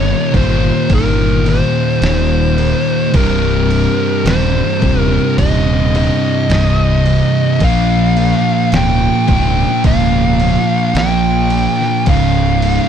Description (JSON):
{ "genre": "stoner and doom metal", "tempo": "54 BPM", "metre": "4/4", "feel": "straight", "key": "C phrygian", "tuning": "A4 = 440 Hz", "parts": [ { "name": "fuzz lead guitar", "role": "melody", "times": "0.0-12.9 s", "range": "Bb4 to G5", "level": "-18 LUFS", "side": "equal", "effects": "distortion" }, { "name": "fuzz guitar", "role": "riff", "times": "0.0-12.9 s", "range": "C2 to Bb3", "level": "-21 LUFS", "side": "equal", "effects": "distortion" }, { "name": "thick fuzz guitar", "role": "riff", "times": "0.0-12.9 s", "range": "C2 to Bb3", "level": "-18 LUFS", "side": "left 9 dB", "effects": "distortion" }, { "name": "thick fuzz guitar", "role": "riff", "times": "0.0-12.9 s", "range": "C2 to Bb3", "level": "-18 LUFS", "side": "right 10 dB", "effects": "distortion" }, { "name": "fuzz fingered electric bass", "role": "bass", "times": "0.0-12.8 s", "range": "C1 to Bb1", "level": "-16 LUFS", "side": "equal", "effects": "overdrive" }, { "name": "lo-fi sampler-style drum kit", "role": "drums", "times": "0.3-12.9 s", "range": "crash cymbal, kick drum, snare drum", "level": "-21 LUFS", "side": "equal", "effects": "overdrive" } ], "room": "little or no reverb", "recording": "dark, warm production", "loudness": "-11 LUFS", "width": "side -8 dB against mid", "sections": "0.0-12.9 A section", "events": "none", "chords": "0.0 Eb; 3.1 Cm; 7.6 Bbm; 12.1 Db" }